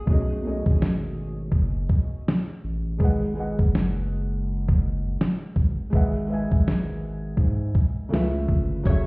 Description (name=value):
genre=lo-fi hip hop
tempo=82 BPM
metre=4/4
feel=swing 58% on 16ths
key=unclear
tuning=A4 = 440 Hz
part: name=archtop guitar, miked and amplified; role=melody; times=0.0-0.4, 8.9-9.1 s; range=G#4 to C#5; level=-40 LUFS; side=left 2 dB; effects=plate reverb, tape echo
part: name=felt-muted upright piano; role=accompaniment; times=0.0-9.1 s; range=B2 to G#5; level=-30 LUFS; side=equal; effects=plate reverb
part: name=saturated sub bass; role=bass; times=0.1-9.1 s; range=F#1 to G#2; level=-27 LUFS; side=equal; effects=none
part: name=dusty soul sampler-style drum kit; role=drums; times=0.1-9.1 s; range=hi-hat, kick drum, snare drum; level=-21 LUFS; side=equal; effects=none
room=light reverb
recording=heard muffled through a wall, stone room reverb, vinyl crackle, EQ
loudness=-22 LUFS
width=side -28 dB against mid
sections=0.0-9.1 A section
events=break 0.0-8.9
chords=0.1 B13; 3.0 G#m7; 5.9 Emaj9/G#; 8.1 C#7alt